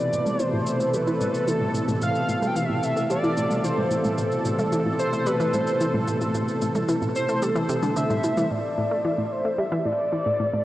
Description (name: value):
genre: ambient, sequencer-driven space music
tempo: 111 BPM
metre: 4/4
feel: straight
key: A minor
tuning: A4 = 440 Hz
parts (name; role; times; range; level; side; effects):
- pulse-width lead; melody; 0.0-10.6 s; A4 to G5; -26 LUFS; equal; chorus, cassette tape, tape echo
- sweeping resonant pad; sustained chords; 0.0-10.6 s; B2 to A4; -26 LUFS; equal; chorus
- analog pluck; riff; 0.1-10.6 s; A2 to A3; -27 LUFS; equal; chorus, tape echo
- cabasa and congas; percussion; 0.1-8.5 s; none; -35 LUFS; equal; tape echo
room: wet huge ambient reverb, RT60 7.8 s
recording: worn, warbling old tape, cassette tape, warbly pitch drift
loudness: -22 LUFS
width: side -15 dB against mid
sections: 0.0-8.5 A section; 8.5-10.6 B section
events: filter sweep on synth arpeggio sound 0.0-8.5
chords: 0.0 Amadd9; 8.5 Am7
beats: 0.40 0.94 1.48 | 2.02 2.56 3.10 3.64 | 4.18 4.72 5.26 5.81 | 6.35 6.89 7.43 7.97 | 8.51 9.05 9.59 10.13